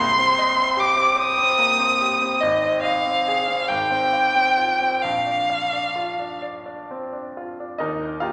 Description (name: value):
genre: classical, romantic duo for violin and grand piano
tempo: 42-52 BPM (dotted quarters)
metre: 6/8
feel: rubato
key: unclear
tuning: A4 = 441 Hz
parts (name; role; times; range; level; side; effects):
- rich violin; melody; 0.0-6.4 s; Eb5 to Eb6; -21 LUFS; equal; none
- bright grand piano; accompaniment; 0.0-8.3 s; Ab1 to F5; -29 LUFS; equal; none
room: wet concert hall reverb, RT60 1.8 s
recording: none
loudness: -20 LUFS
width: mono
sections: 0.0-7.8 A section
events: none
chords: 0.0 Cm; 2.4 Ab; 3.7 Fm/Ab; 5.0 Bb; 7.8 Eb